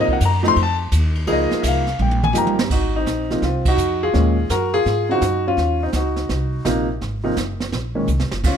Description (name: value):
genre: jazz piano trio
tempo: 168 BPM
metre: 4/4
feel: swing 65% on 8ths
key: Ab mixolydian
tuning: A4 = 441 Hz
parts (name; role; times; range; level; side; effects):
- warm concert grand piano; melody; 0.0-8.6 s; Bb2 to C6; -19 LUFS; left 1 dB; plate reverb
- upright bass; bass; 0.0-8.6 s; Gb1 to Ab2; -21 LUFS; equal; none
- jazz brush drum kit; drums; 0.1-8.6 s; brushed snare drum, crash cymbal, hi-hat, kick drum, ride cymbal, snare drum, toms; -24 LUFS; right 3 dB; none
room: light reverb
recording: close, detailed microphones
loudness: -17 LUFS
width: side -8 dB against mid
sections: 0.0-2.7 A section; 2.7-8.6 B section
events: grand piano solo 0.0-2.7; drum fill 2.0-2.7, 8.1-8.4; band accent 3.6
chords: 0.0 Ab7 (rootless); 0.6 F7(no3); 1.3 Bbm7; 2.0 Eb; 2.7 Ab7